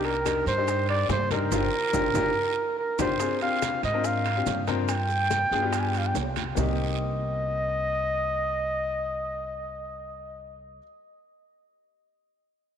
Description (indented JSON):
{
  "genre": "Afro-Cuban jazz",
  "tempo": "142 BPM",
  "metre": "4/4",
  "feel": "straight",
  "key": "C minor",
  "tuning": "A4 = 440 Hz",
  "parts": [
    { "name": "breathy trumpet", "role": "melody", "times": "0.0-10.7 s", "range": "Bb4 to Ab5", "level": "-27 LUFS", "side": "right 1 dB", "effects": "none" },
    { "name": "clear baby grand piano", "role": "accompaniment", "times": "0.0-10.8 s", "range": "Bb3 to C5", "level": "-31 LUFS", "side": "left 8 dB", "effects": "none" },
    { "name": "upright bass", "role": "bass", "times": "0.0-10.8 s", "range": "G1 to Ab2", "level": "-31 LUFS", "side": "right 2 dB", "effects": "none" },
    { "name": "timbales", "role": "percussion", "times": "0.0-6.7 s", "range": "none", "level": "-36 LUFS", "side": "right 14 dB", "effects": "none" },
    { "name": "congas", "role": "percussion", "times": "0.1-6.7 s", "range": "none", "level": "-38 LUFS", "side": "left 7 dB", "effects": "none" },
    { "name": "bongos", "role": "percussion", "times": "0.3-6.7 s", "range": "none", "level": "-39 LUFS", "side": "left 10 dB", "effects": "none" },
    { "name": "guiro", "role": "percussion", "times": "0.3-6.7 s", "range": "none", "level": "-39 LUFS", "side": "right 16 dB", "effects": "none" },
    { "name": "maracas", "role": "percussion", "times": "0.3-6.7 s", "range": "none", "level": "-41 LUFS", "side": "right 16 dB", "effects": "none" }
  ],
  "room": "moderate plate reverb, RT60 3.6 s",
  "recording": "1960s-style stereo with parts hard left and right",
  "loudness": "-24 LUFS",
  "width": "side -8 dB against mid",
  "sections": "0.0-3.2 A section; 3.2-6.6 B section; 6.6-10.0 C section",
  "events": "band accent 1.5-3.2; drum fill 2.6-3.2",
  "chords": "0.0 Cm9; 1.5 Gm7; 3.2 Dm7b5; 4.9 G7; 6.6 Cm7"
}